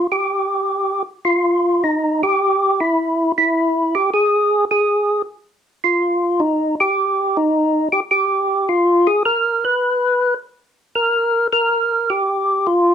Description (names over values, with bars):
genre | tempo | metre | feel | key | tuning
jazz | 105 BPM | 4/4 | swing 68% on 8ths | unclear | A4 = 439 Hz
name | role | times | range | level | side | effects
percussive tonewheel organ | solo | 0.0-12.9 s | Eb4 to B4 | -15 LUFS | equal | slow rotary speaker, overdrive
room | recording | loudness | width
wet club reverb, RT60 0.5 s | none | -15 LUFS | side -8 dB against mid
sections
0.0-10.9 A section; 10.9-12.9 B section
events
none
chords
none